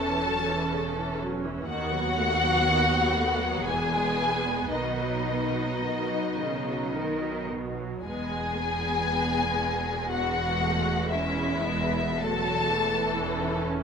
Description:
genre	classical, slow romantic movement for string orchestra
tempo	53-64 BPM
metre	3/4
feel	rubato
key	E major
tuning	A4 = 441 Hz
part	warm studio violin section	melody	0.0-13.7 s	D#5 to A5	-29 LUFS	left 3 dB	none
part	dark symphonic violin section	second line	0.0-13.6 s	D#4 to A4	-32 LUFS	left 2 dB	none
part	warm symphonic viola section	accompaniment	0.0-13.8 s	C#3 to C#4	-31 LUFS	equal	none
part	rich symphonic cello section	bass	0.0-13.8 s	D#2 to D#3	-34 LUFS	right 4 dB	none
part	rich symphonic double bass section	bass	0.0-13.8 s	E1 to D#2	-33 LUFS	right 3 dB	none
room	light reverb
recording	minimal, uncompressed stereo recording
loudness	-24 LUFS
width	side -6 dB against mid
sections	0.0-13.8 A section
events	none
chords	0.0 F#m7/E; 1.7 B7/D#; 3.7 E; 4.7 B; 8.1 E; 11.1 F#m7/E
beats	0.73 | 1.69 2.66 3.68 | 4.75 5.84 6.96 | 8.06 9.12 10.13 | 11.13 12.20 13.19

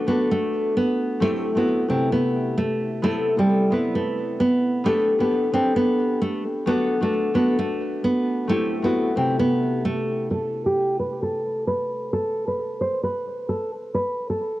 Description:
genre	hip hop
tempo	132 BPM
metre	4/4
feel	half-time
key	unclear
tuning	A4 = 440 Hz
part	nylon-string guitar	melody	0.0-14.6 s	G3 to C5	-22 LUFS	right 1 dB	low-pass filter, tape echo
part	concert harp	accompaniment	0.0-12.5 s	C3 to B4	-24 LUFS	left 2 dB	low-pass filter, cassette tape
room	light reverb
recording	home recording on cassette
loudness	-20 LUFS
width	side -16 dB against mid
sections	0.0-10.3 A section; 10.3-14.6 B section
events	break 10.3-14.6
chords	0.0 D; 1.2 C6; 3.0 Amadd9; 4.9 Gadd9; 6.7 D; 8.5 C6; 10.3 N.C.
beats	0.31 0.77 | 1.22 1.67 2.13 2.58 | 3.04 3.49 3.95 4.40 | 4.86 5.31 5.76 6.22 | 6.67 7.13 7.58 8.04 | 8.49 8.95 9.40 9.86 | 10.31 10.77 11.22 11.67 | 12.13 12.58 13.04 13.49 | 13.95 14.40

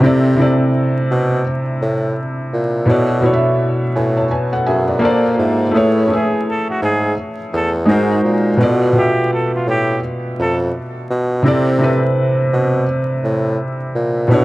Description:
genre	hip hop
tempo	84 BPM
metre	4/4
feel	swing 60% on 16ths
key	unclear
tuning	A4 = 442 Hz
part	felt-muted upright piano	accompaniment	0.0-14.4 s	B2 to A5	-15 LUFS	equal	cassette tape
part	warm bassoon	bass	0.0-14.4 s	E2 to C3	-18 LUFS	equal	none
part	trumpet with straight mute	melody	6.1-10.6 s	F4 to A4	-22 LUFS	right 1 dB	analog delay
room	moderate spring reverb, RT60 1.6 s, small room ambience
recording	vinyl crackle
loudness	-14 LUFS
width	side -18 dB against mid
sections	0.0-14.4 A section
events	felt piano fill 4.3-5.7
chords	0.0 C69; 2.9 Bm11; 5.0 A#maj7; 5.7 Amaj7; 7.9 G#9; 8.6 Fmaj9#11; 11.5 C69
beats	| 0.03 0.74 1.45 2.17 | 2.88 3.60 4.31 5.03 | 5.74 6.45 7.17 7.88 | 8.60 9.31 10.03 10.74 | 11.45 12.17 12.88 13.60 | 14.31

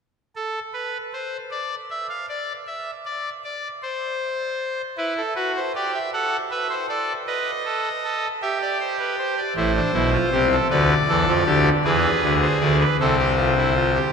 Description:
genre	classical, baroque-style 3-part fugue for pipe organ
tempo	52 BPM (dotted quarters)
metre	6/8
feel	straight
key	A minor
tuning	A4 = 440 Hz
part	pipe organ, trumpet	solo	0.4-14.1 s	A1 to F#5	-20 LUFS	equal	none
room	wet cathedral reverb, RT60 6.6 s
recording	none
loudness	-20 LUFS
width	side -6 dB against mid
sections	0.4-14.1 A section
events	none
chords	0.4 N.C.; 5.0 Em; 6.1 Am; 7.3 B7; 8.4 Em/G; 9.6 Am; 10.7 Dm; 11.8 E7; 13.0 Am/C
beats	| 0.36 1.51 | 2.67 3.82 | 4.98 6.13 | 7.27 8.42 | 9.56 10.70 | 11.84 12.99

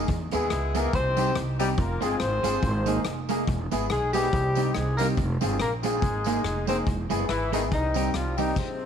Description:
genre	ska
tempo	142 BPM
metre	4/4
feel	swing 56% on 8ths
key	unclear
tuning	A4 = 439 Hz
part	electric guitar at the edge of break-up	accompaniment	0.0-8.5 s	G3 to G#4	-31 LUFS	right 12 dB	spring reverb
part	warm upright piano	stabs	0.0-8.5 s	Bb3 to G#4	-32 LUFS	left 11 dB	none
part	upright bass	bass	0.0-8.5 s	E1 to E2	-29 LUFS	right 1 dB	none
part	street-band drum kit	drums	0.1-8.7 s	crash cymbal, hi-hat, kick drum, rim click	-32 LUFS	left 2 dB	none
part	warm horn section	melody	0.3-8.9 s	C3 to C5	-28 LUFS	left 2 dB	none
part	tambourine	percussion	0.3-8.5 s	none	-43 LUFS	right 15 dB	none
room	light reverb, studio reverb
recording	1960s-style stereo with parts hard left and right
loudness	-23 LUFS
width	side -8 dB against mid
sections	0.0-8.9 A section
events	stop 8.6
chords	0.1 E; 0.9 Cm; 1.8 Fm; 2.6 Absus2; 3.5 E; 4.3 Cm; 5.2 Fm; 6.0 Absus2; 6.9 E; 7.7 Cm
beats	| 0.09 0.51 0.94 1.36 | 1.78 2.21 2.63 3.06 | 3.48 3.90 4.33 4.75 | 5.17 5.60 6.02 6.45 | 6.87 7.29 7.72 8.14 | 8.57

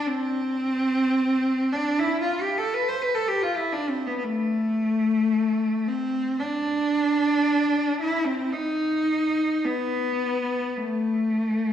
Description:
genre	classical, free, expressive piece for unaccompanied cello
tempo	52-60 BPM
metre	4/4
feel	rubato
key	A minor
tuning	A4 = 439 Hz
part	clear cello	solo	0.0-11.7 s	A3 to C5	-22 LUFS	equal	none
room	wet concert hall reverb, RT60 1.9 s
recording	heard from further back in the room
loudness	-22 LUFS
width	side -9 dB against mid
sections	0.0-11.7 A section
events	none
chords	none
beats	| 0.07 1.10 2.16 3.21 | 4.25 5.33 6.39 7.46 | 8.54 9.66 10.77

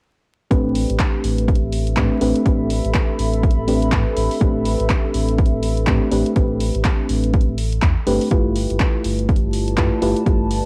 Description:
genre	deep house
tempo	123 BPM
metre	4/4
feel	swing 59% on 16ths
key	A minor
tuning	A4 = 439 Hz
part	mellow FM electric piano	stabs	0.5-10.7 s	A3 to B4	-24 LUFS	equal	chorus, sidechain pumping, low-pass filter, cassette tape, analog delay
part	sub bass with octave	bass	0.5-10.6 s	G1 to A2	-24 LUFS	equal	tube saturation, sidechain pumping
part	electronic kick drum	drums	0.5-10.4 s	none	-20 LUFS	equal	overdrive, small room ambience, cassette tape
part	punchy analog drum machine	drums	0.5-10.6 s	handclaps, hi-hat	-30 LUFS	equal	overdrive, small room ambience, cassette tape
part	warbly tape-like pad	texture	1.6-10.7 s	G4 to B5	-32 LUFS	equal	chorus, built-in reverb, sidechain pumping, cassette tape
room	little or no reverb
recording	home recording on cassette, vinyl crackle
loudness	-19 LUFS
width	mono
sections	0.5-10.7 A section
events	filter sweep on FM electric piano 0.5-10.7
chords	0.5 Am11; 8.3 G13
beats	| 0.51 1.00 1.48 1.97 | 2.46 2.95 3.44 3.92 | 4.41 4.90 5.39 5.87 | 6.36 6.85 7.34 7.83 | 8.31 8.80 9.29 9.78 | 10.26

